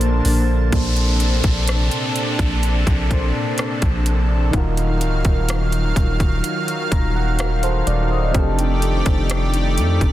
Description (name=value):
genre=contemporary R&B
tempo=63 BPM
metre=4/4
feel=straight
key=Bb major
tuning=A4 = 440 Hz
part: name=soft electric-piano-like synth keys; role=accompaniment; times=0.0-10.1 s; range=Bb2 to Bb5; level=-24 LUFS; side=equal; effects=chorus, phaser
part: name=lush unison pad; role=sustained chords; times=0.0-10.1 s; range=C3 to A5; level=-25 LUFS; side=equal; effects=chorus
part: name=long sustained 808-style bass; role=bass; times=0.0-10.1 s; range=D1 to F2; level=-19 LUFS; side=equal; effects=none
part: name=trap drum kit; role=drums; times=0.0-10.1 s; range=hi-hat, kick drum, rim click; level=-21 LUFS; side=equal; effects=none
part: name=downlifter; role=sound effects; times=0.7-8.3 s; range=none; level=-28 LUFS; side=equal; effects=none
room=little or no reverb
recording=dense, heavily limited modern master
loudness=-16 LUFS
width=side -14 dB against mid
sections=0.7-10.1 A section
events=synth keys fill 6.4-8.3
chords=0.0 Bbmaj9; 4.5 Ebmadd9; 8.3 F13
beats=| 0.72 1.68 2.63 3.58 | 4.54 5.49 6.44 7.39 | 8.34 9.30